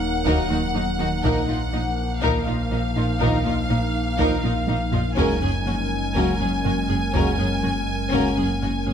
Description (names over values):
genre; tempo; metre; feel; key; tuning
cinematic, hybrid orchestral and electronic film score; 122 BPM; 4/4; straight; unclear; A4 = 440 Hz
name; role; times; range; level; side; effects
rich studio violin section; melody; 0.0-8.9 s; F5 to Ab5; -28 LUFS; left 2 dB; none
warbly tape-like pad; sustained chords; 0.0-8.9 s; F3 to Bb4; -28 LUFS; left 1 dB; chorus, built-in reverb
sub bass with octave; bass; 0.0-8.9 s; Eb1 to Bb1; -28 LUFS; left 1 dB; none
warm symphonic violin section; second line; 0.3-8.9 s; Eb4 to Bb4; -30 LUFS; left 1 dB; none
warm symphonic viola section; accompaniment; 0.3-8.9 s; Db4 to Eb4; -29 LUFS; left 2 dB; none
mellow French horn section; sustained chords; 0.3-8.3 s; Bb3 to Gb4; -31 LUFS; left 3 dB; none
mellow trombone section; sustained chords; 0.3-8.3 s; Db3 to Ab3; -31 LUFS; right 4 dB; none
thumb-piano-like synth pluck; arpeggios; 0.3-8.9 s; Eb3 to Eb4; -33 LUFS; right 3 dB; chorus, tape echo
rich symphonic cello section; bass; 0.3-8.9 s; Eb2 to Bb2; -30 LUFS; right 2 dB; none
warm symphonic double bass section; bass; 0.3-8.9 s; Gb1 to Eb2; -30 LUFS; right 2 dB; none
taiko ensemble; drums; 0.3-8.6 s; none; -28 LUFS; left 1 dB; none
room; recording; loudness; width
moderate recital hall reverb, RT60 1.4 s; close, detailed microphones; -20 LUFS; side -8 dB against mid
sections
0.0-8.9 A section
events
drum fill 4.4-5.2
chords
0.0 Ebm; 1.2 Bbsus4; 5.2 Gbadd9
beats
0.26 0.75 | 1.24 1.73 2.22 2.71 | 3.21 3.70 4.19 4.68 | 5.17 5.67 6.16 6.65 | 7.14 7.63 8.12 8.62